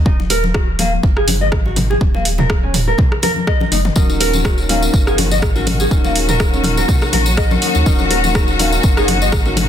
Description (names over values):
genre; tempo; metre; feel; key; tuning
afro house; 123 BPM; 4/4; swing 55% on 16ths; Eb minor; A4 = 436 Hz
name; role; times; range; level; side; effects
warm sub bass; bass; 0.0-9.7 s; Eb1 to Eb2; -19 LUFS; equal; tube saturation, sidechain pumping
nylon-string guitar; arpeggios; 0.1-9.6 s; Bb3 to Eb5; -20 LUFS; equal; sidechain pumping, low-pass filter, ping-pong delay
electronic kick drum; drums; 0.1-9.4 s; none; -15 LUFS; equal; overdrive, studio reverb
congas; percussion; 0.1-9.7 s; none; -23 LUFS; left 3 dB; none
deep house drum kit; drums; 0.3-9.7 s; hi-hat, rim click, toms; -20 LUFS; right 1 dB; overdrive, studio reverb
rich studio string section; sustained chords; 4.0-9.7 s; Eb3 to Gb4; -22 LUFS; left 3 dB; sidechain pumping
tine electric piano; stabs; 4.0-9.7 s; Db4 to Bb4; -22 LUFS; left 2 dB; analog chorus, sidechain pumping, ping-pong delay
tambourine; percussion; 4.0-9.5 s; none; -26 LUFS; left 3 dB; none
room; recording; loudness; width
little or no reverb; dense, heavily limited modern master; -12 LUFS; side -10 dB against mid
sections
0.0-9.7 A section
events
drum fill 3.7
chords
0.0 Ebm7